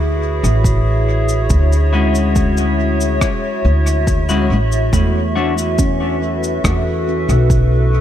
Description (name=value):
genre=ambient dub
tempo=70 BPM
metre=4/4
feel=straight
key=unclear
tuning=A4 = 437 Hz
part: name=warbly tape-like pad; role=sustained chords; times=0.0-8.0 s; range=E4 to E5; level=-20 LUFS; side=equal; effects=chorus, built-in reverb
part: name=upright bass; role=bass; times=0.0-8.0 s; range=A1 to E2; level=-16 LUFS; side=equal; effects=tube saturation
part: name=cabasa and rim click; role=drums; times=0.4-7.7 s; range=none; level=-27 LUFS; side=left 1 dB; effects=dub echo
part: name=electronic kick drum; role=drums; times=0.6-7.7 s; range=none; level=-18 LUFS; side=equal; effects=none
part: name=clean electric guitar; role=stabs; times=1.9-5.5 s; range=G#3 to F#4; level=-22 LUFS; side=left 4 dB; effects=dub echo
part: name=handpan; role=arpeggios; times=4.9-8.0 s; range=A3 to C#4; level=-24 LUFS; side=right 3 dB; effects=tape echo
room=small room reverb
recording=none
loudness=-13 LUFS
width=side -11 dB against mid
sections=0.0-8.0 A section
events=none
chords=0.0 Dmaj9#11; 4.9 Esus4